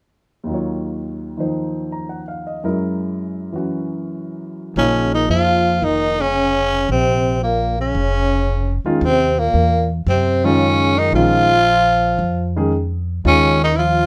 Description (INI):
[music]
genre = jazz, small-group swing and bop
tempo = 113 BPM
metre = 4/4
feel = swing 69% on 8ths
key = Bb minor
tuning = A4 = 440 Hz
[part]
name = warm baby grand piano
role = accompaniment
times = 0.4-13.6 s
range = Eb2 to Bb5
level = -23 LUFS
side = equal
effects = none
[part]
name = growling tenor saxophone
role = melody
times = 4.8-14.1 s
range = Bb3 to F4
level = -19 LUFS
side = equal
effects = none
[part]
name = breathy trombone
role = second line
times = 4.8-14.1 s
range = Bb2 to F3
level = -25 LUFS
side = equal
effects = none
[part]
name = upright bass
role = bass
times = 4.8-14.1 s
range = F1 to Gb2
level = -23 LUFS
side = equal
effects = none
[sound]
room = light reverb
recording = none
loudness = -18 LUFS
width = mono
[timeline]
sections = 0.5-4.8 A section; 4.8-14.1 B section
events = none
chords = 0.5 Ebm9; 2.6 Gb7; 4.8 Bbm7; 9.0 Ebm9; 11.1 Bbm7; 13.2 Ebsus2